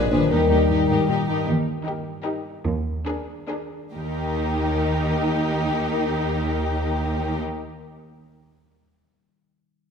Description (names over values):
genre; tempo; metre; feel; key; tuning
cinematic, playful, whimsical film cue; 133-156 BPM; 3/4; straight; Eb major; A4 = 441 Hz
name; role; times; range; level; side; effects
warm studio violin section; melody; 0.0-7.4 s; Bb4 to Cb5; -32 LUFS; left 7 dB; none
warm studio violin section; second line; 0.0-7.4 s; G4 to Ab4; -30 LUFS; left 3 dB; none
dark bassoon; accompaniment; 0.0-1.1 s; Eb3 to G3; -26 LUFS; right 1 dB; none
rich studio viola section; accompaniment; 0.0-7.4 s; D4 to Eb4; -28 LUFS; equal; none
concert harp; arpeggios; 0.0-3.9 s; Bb2 to Cb5; -24 LUFS; left 5 dB; none
rich studio double bass section; bass; 0.0-0.5 s; Bb1 to Eb2; -25 LUFS; right 1 dB; none
warm studio cello section; bass; 0.1-7.4 s; Eb2 to Bb2; -26 LUFS; right 2 dB; none
room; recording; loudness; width
wet scoring stage reverb, RT60 1.8 s; minimal, uncompressed stereo recording; -21 LUFS; side -6 dB against mid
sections
0.0-1.5 A section; 1.5-3.9 B section; 3.9-6.6 C section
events
slowing down 0.9-3.9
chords
0.3 Eb; 2.7 Bb7/Eb; 3.9 Eb